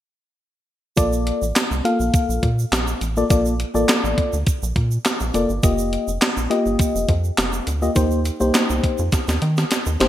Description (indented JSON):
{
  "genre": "early-eighties boogie funk",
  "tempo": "103 BPM",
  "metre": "4/4",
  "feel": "straight",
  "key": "Bb major",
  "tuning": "A4 = 441 Hz",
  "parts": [
    { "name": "mellow FM electric piano", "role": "accompaniment", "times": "1.0-10.1 s", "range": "Bb3 to F5", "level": "-21 LUFS", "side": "left 2 dB", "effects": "chorus" },
    { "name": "rubbery square bass", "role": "bass", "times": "1.0-10.1 s", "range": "F1 to Eb3", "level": "-22 LUFS", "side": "equal", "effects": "none" },
    { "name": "clean 12-bit digital drum machine", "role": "drums", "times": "1.0-10.1 s", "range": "handclaps, hi-hat, kick drum, snare drum", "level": "-20 LUFS", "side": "equal", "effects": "gated reverb" },
    { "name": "egg shaker", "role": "percussion", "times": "1.0-10.1 s", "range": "none", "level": "-34 LUFS", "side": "right 10 dB", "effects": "none" }
  ],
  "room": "moderate plate reverb, RT60 1.7 s",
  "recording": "bright 1980s-style digital production",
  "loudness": "-17 LUFS",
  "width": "side -12 dB against mid",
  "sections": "1.0-10.1 A section",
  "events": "drum fill 9.1-10.1",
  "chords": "1.0 Bbmaj7; 5.6 F9sus4; 8.0 Eb6",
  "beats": "| 0.97 1.56 2.14 2.72 | 3.30 3.89 4.47 5.05 | 5.63 6.22 6.80 7.38 | 7.96 8.55 9.13 9.71"
}